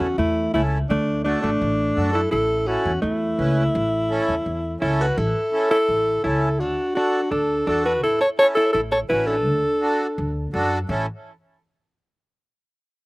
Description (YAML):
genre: latin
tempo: 168 BPM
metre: 4/4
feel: straight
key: A major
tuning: A4 = 440 Hz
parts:
  - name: breathy alto saxophone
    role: melody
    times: 0.0-10.5 s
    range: D4 to C#5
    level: -21 LUFS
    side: equal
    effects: none
  - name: hollow-body jazz guitar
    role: second line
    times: 0.0-10.5 s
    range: A3 to A4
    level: -27 LUFS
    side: right 1 dB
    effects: slapback echo
  - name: accordion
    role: accompaniment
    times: 0.0-11.1 s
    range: C#4 to B4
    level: -26 LUFS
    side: right 1 dB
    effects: slapback echo
  - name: upright bass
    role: bass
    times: 0.0-11.1 s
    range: A1 to F#2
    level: -26 LUFS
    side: equal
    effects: none
room: little or no reverb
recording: recorded outdoors, with no room sound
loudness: -19 LUFS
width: side -23 dB against mid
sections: 0.0-5.2 A section; 5.2-10.9 B section; 10.9-12.3 C section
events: none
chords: 0.0 A; 0.9 D; 2.3 A; 6.6 D; 8.0 A; 9.5 D; 10.9 A